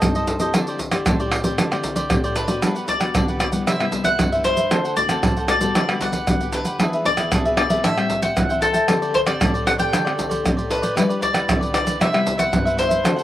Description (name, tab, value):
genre	samba and choro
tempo	115 BPM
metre	4/4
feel	straight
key	G major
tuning	A4 = 440 Hz
part	cavaquinho	accompaniment	0.0-13.2 s	D4 to G5	-25 LUFS	right 1 dB	slapback echo
part	nylon-string guitar	accompaniment	0.0-13.2 s	G2 to B4	-26 LUFS	left 4 dB	none
part	maracas, surdo, pandeiro and tamborim	percussion	0.0-13.2 s	none	-21 LUFS	right 1 dB	none
part	bowl-back mandolin	melody	2.4-13.2 s	A4 to G5	-22 LUFS	left 2 dB	slapback echo
room	little or no reverb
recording	recorded outdoors, with no room sound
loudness	-17 LUFS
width	side -13 dB against mid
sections	0.0-2.6 A section; 2.6-13.2 B section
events	none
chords	0.0 Cm6; 0.5 D9sus4; 2.6 Gmaj7; 3.7 Cmaj7; 4.7 D7; 5.8 Gmaj7/D; 6.8 E7; 7.8 Am7; 8.9 D7sus4; 11.0 G6; 12.0 Cmaj7